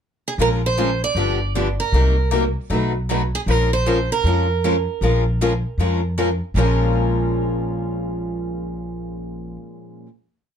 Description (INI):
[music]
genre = acoustic string swing (jazz manouche)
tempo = 156 BPM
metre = 4/4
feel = swing 62% on 8ths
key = Bb minor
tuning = A4 = 437 Hz
[part]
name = picked steel-string acoustic guitar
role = melody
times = 0.3-6.1 s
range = Ab4 to D5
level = -23 LUFS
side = right 6 dB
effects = plate reverb
[part]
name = picked steel-string acoustic guitar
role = accompaniment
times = 0.4-10.1 s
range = Bb2 to Bb4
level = -24 LUFS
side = left 8 dB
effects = none
[part]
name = picked steel-string acoustic guitar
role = accompaniment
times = 0.4-10.1 s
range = Bb2 to B4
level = -27 LUFS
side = right 7 dB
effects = none
[part]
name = upright bass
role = bass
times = 0.4-9.6 s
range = G1 to F2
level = -21 LUFS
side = equal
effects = none
[sound]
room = light reverb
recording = dark, warm production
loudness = -18 LUFS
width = side -8 dB against mid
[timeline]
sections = 0.0-0.4 pickup bar; 0.4-6.6 A section; 6.6-9.6 final chord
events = none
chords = 0.4 Bbm7; 1.2 G7; 1.9 Cm7b5; 2.7 B7; 3.5 Bbm7